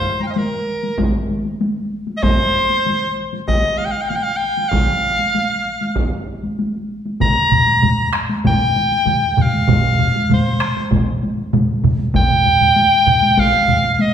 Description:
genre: japanese traditional, taiko drum ensemble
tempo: 97 BPM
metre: 4/4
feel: straight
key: F suspended pentatonic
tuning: A4 = 444 Hz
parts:
  - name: edgy soprano saxophone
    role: melody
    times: 0.0-14.1 s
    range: Bb4 to Bb5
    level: -16 LUFS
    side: equal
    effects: none
  - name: taiko ensemble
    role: percussion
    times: 0.2-14.1 s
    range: none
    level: -22 LUFS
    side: left 1 dB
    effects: none
  - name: taiko ensemble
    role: percussion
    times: 1.0-13.5 s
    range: none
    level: -23 LUFS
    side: right 1 dB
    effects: none
  - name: taiko ensemble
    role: percussion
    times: 7.2-13.8 s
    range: none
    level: -22 LUFS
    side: left 3 dB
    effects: none
  - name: taiko ensemble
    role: percussion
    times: 7.2-13.8 s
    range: none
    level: -19 LUFS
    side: right 2 dB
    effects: none
room: wet recital hall reverb, RT60 1.5 s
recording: recorded in a church or concert hall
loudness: -14 LUFS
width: side -8 dB against mid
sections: 0.0-14.1 A section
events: none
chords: none

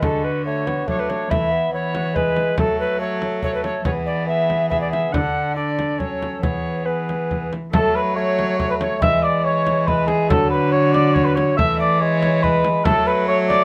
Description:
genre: classical, renaissance-style consort dance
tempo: 140 BPM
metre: 3/4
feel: straight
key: unclear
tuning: A4 = 439 Hz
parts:
  - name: mellow alto recorder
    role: melody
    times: 0.0-13.6 s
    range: G#4 to F#5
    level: -26 LUFS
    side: equal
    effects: none
  - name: mellow cor anglais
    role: second line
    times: 0.0-13.6 s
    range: D4 to E5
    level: -26 LUFS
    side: equal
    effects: none
  - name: warm bassoon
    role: accompaniment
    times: 0.0-13.6 s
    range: F#3 to D4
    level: -27 LUFS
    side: equal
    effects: none
  - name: rich cello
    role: bass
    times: 0.0-13.6 s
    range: D3 to F#3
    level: -25 LUFS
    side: equal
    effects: none
  - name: frame drum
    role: percussion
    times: 0.0-13.6 s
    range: none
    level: -27 LUFS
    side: equal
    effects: none
room: light reverb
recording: close, detailed microphones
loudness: -20 LUFS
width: mono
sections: 0.0-7.7 A section; 7.7-13.6 A section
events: none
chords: 0.0 D; 1.3 Esus4; 1.7 E; 2.6 F#m; 3.9 E; 5.1 D; 6.4 E; 7.7 F#m; 9.0 E; 10.3 D; 11.6 Esus4; 12.0 E; 12.9 F#m

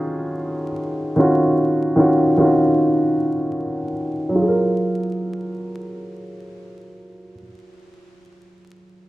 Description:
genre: hip hop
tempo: free time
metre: none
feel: none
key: F# major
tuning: A4 = 440 Hz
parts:
  - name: felt-muted upright piano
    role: accompaniment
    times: 0.0-9.1 s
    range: D#3 to A#4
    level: -18 LUFS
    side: equal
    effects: cassette tape, low-pass filter
room: wet small room reverb, RT60 0.5 s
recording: vinyl crackle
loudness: -17 LUFS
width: side -16 dB against mid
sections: 0.0-4.4 A section; 4.4-7.6 B section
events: filter sweep on felt piano 0.0-4.4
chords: 0.0 D#m9; 4.4 F#maj9

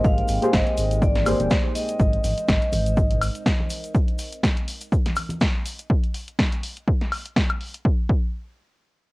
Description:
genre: deep house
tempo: 123 BPM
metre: 4/4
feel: swing 56% on 16ths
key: unclear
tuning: A4 = 440 Hz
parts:
  - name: vibraphone with medium hard mallets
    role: melody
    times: 0.0-3.2 s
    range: C5 to F5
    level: -27 LUFS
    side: equal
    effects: cassette tape, tape echo
  - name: warbly tape-like pad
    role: sustained chords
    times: 0.0-3.9 s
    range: Ab3 to G5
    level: -37 LUFS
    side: right 2 dB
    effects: chorus, built-in reverb, sidechain pumping, cassette tape
  - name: deep mellow chord stab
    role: stabs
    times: 0.0-2.2 s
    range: Bb3 to C5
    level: -26 LUFS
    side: equal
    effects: chorus, phaser, cassette tape, sidechain pumping, tape echo
  - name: sub bass with octave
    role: bass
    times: 0.0-3.3 s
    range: Eb1 to Ab1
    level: -24 LUFS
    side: equal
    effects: tube saturation, sidechain pumping
  - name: electronic kick drum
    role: drums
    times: 0.0-8.3 s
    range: none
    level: -21 LUFS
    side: equal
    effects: overdrive
  - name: tube shaker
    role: percussion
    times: 0.0-5.9 s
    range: none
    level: -43 LUFS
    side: left 1 dB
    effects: none
  - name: punchy analog drum machine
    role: drums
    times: 0.2-7.8 s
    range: hi-hat, snare drum, woodblock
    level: -26 LUFS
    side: equal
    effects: overdrive
  - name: congas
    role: percussion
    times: 1.2-5.4 s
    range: none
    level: -33 LUFS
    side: equal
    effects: sidechain pumping on perc
room: light reverb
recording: home recording on cassette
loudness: -20 LUFS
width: side -21 dB against mid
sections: 0.0-7.8 A section; 7.8-9.1 B section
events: drop 0.0-7.8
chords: 0.0 Abmaj9; 3.9 N.C.

